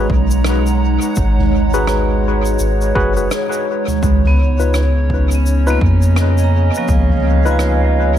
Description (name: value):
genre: ambient dub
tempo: 84 BPM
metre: 4/4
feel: swing 60% on 16ths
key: G# dorian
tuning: A4 = 440 Hz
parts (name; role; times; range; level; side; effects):
- warbly tape-like pad; sustained chords; 0.0-8.2 s; C#3 to A#5; -19 LUFS; right 2 dB; chorus, built-in reverb, phaser
- tine electric piano; stabs; 0.0-8.2 s; D#4 to B4; -22 LUFS; left 2 dB; medium stereo tremolo, dub echo
- soft dub sub bass; bass; 0.0-8.2 s; F#1 to E#2; -15 LUFS; equal; none
- electronic kick drum; drums; 0.1-7.1 s; none; -19 LUFS; equal; overdrive
- soft-mallet drum kit; drums; 0.3-7.8 s; rim click, shaker, toms; -24 LUFS; left 1 dB; dub echo
- vibraphone with hard mallets; arpeggios; 4.3-8.2 s; E#3 to A#5; -24 LUFS; right 3 dB; tape echo
room: light reverb, studio reverb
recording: none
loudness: -12 LUFS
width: side -10 dB against mid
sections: 0.0-8.2 A section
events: none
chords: 0.0 G#m7; 4.0 C#9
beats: 0.46 | 1.17 1.88 2.60 3.31 | 4.03 4.74 5.46 6.17 | 6.88 7.60